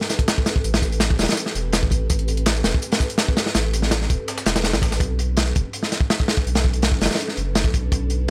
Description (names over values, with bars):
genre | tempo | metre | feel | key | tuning
drum and bass, jungle | 165 BPM | 4/4 | straight | B phrygian | A4 = 441 Hz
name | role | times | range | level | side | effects
ethereal airy pad | sustained chords | 0.0-8.3 s | C4 to B4 | -35 LUFS | equal | ensemble chorus, built-in reverb
crunchy breakbeat drum kit | drums | 0.0-8.2 s | hi-hat, kick drum, snare drum | -22 LUFS | equal | none
breakbeat sampler-style drum kit | drums | 0.1-5.0 s | hi-hat, snare drum, tambourine | -33 LUFS | equal | high-pass filter on perc, high-pass filter on hats, high-pass filter on snare, high-pass filter on room
saturated sub bass | bass | 0.6-8.3 s | E1 to B1 | -25 LUFS | equal | tube saturation
room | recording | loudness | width
small room ambience | dry, gritty hardware recording | -21 LUFS | mono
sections
0.0-5.0 A section; 5.0-8.3 A section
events
drop 0.0-5.0, 5.0-8.3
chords
0.0 Am9; 5.0 Bm9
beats
0.28 | 0.64 1.01 1.37 1.74 | 2.10 2.46 2.83 3.19 | 3.55 3.92 4.28 4.64 | 5.01 5.37 5.74 6.10 | 6.46 6.83 7.19 7.55 | 7.92 8.28